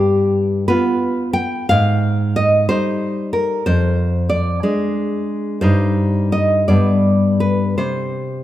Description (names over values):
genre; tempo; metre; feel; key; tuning
romantic piece for solo classical guitar; 53-64 BPM (dotted quarters); 6/8; rubato; unclear; A4 = 440 Hz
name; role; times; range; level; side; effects
nylon-string guitar; solo; 0.0-8.4 s; F2 to G5; -15 LUFS; equal; none
room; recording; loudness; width
moderate scoring stage reverb, RT60 2.0 s; minimal, uncompressed stereo recording; -15 LUFS; side -13 dB against mid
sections
0.0-8.4 A section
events
none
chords
0.0 G7; 1.7 Abmaj7; 3.7 Dm7b5/F; 5.6 Cm/G; 6.7 G; 7.8 N.C.